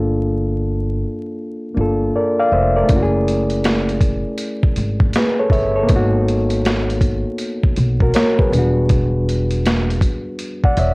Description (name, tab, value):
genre	lo-fi hip hop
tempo	80 BPM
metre	4/4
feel	swing 65% on 16ths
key	unclear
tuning	A4 = 436 Hz
part	overdriven reed electric piano	accompaniment	0.0-10.9 s	G3 to F#5	-19 LUFS	equal	cassette tape
part	upright bass	bass	0.0-10.9 s	E1 to B1	-20 LUFS	equal	none
part	boom bap sampler-style drum kit	drums	2.9-10.9 s	hi-hat, kick drum, snare drum	-17 LUFS	equal	vintage 12-bit sampler grit
room	light reverb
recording	worn, warbling old tape, cassette tape, vinyl crackle, warbly pitch drift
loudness	-15 LUFS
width	side -27 dB against mid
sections	0.0-10.9 A section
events	none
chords	0.0 Gm9; 2.9 F#m9; 5.9 G#m9; 8.5 Em9